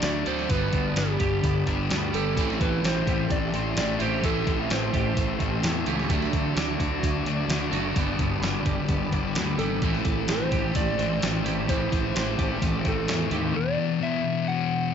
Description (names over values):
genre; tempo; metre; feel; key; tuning
rock, shoegaze and dream pop; 129 BPM; 4/4; straight; unclear; A4 = 443 Hz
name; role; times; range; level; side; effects
soft struck synth lead; melody; 0.0-5.9, 9.6-14.9 s; G4 to F#5; -31 LUFS; right 1 dB; chorus, slapback echo
soft string machine; sustained chords; 0.0-13.5 s; F#4 to E6; -37 LUFS; right 2 dB; ensemble chorus
twangy electric guitar; arpeggios; 0.0-13.6 s; E3 to A4; -36 LUFS; right 8 dB; ensemble chorus, slapback echo
overdriven semi-hollow guitar; riff; 0.0-13.5 s; G2 to E4; -32 LUFS; right 13 dB; reverse reverb
thick fuzz guitar; riff; 0.0-14.9 s; E2 to D4; -28 LUFS; left 8 dB; distortion, wide subtle chorus
fuzz fingered electric bass; bass; 0.0-13.5 s; F#1 to E2; -31 LUFS; equal; overdrive
crisp 8-bit digital drum machine; drums; 0.0-13.4 s; hi-hat, kick drum, snare drum; -28 LUFS; equal; none
room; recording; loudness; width
digital ambience; nothing above 7.6 kHz; -23 LUFS; side -8 dB against mid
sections
0.0-13.5 A section; 13.5-14.9 B section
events
none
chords
0.0 D; 0.5 G; 2.4 Am7; 6.1 D; 8.0 G; 9.8 Am7; 13.5 E5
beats
0.04 | 0.50 0.97 1.44 1.90 | 2.37 2.84 3.30 3.77 | 4.24 4.70 5.17 5.64 | 6.10 6.57 7.04 7.50 | 7.97 8.43 8.90 9.36 | 9.83 10.29 10.76 11.23 | 11.69 12.16 12.62 13.09 | 13.55 14.01 14.48 14.94